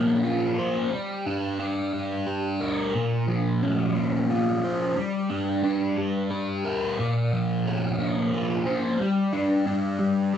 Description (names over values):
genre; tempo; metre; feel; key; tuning
rock; 60 BPM (dotted quarters); 6/8; straight; unclear; A4 = 440 Hz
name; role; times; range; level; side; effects
fuzz guitar; solo; 0.0-10.4 s; Bb2 to C5; -23 LUFS; equal; distortion, phaser
room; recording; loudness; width
moderate large studio reverb, RT60 0.9 s; band playing live in one room; -23 LUFS; side -9 dB against mid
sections
0.0-10.4 A section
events
none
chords
0.0 Bbmadd9; 0.9 Gm; 2.9 Bbmadd9; 5.0 Gm; 7.0 Bbmadd9; 9.0 G5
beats
| 0.93 1.94 | 2.95 3.96 | 4.97 5.98 | 6.98 7.99 | 9.00 10.01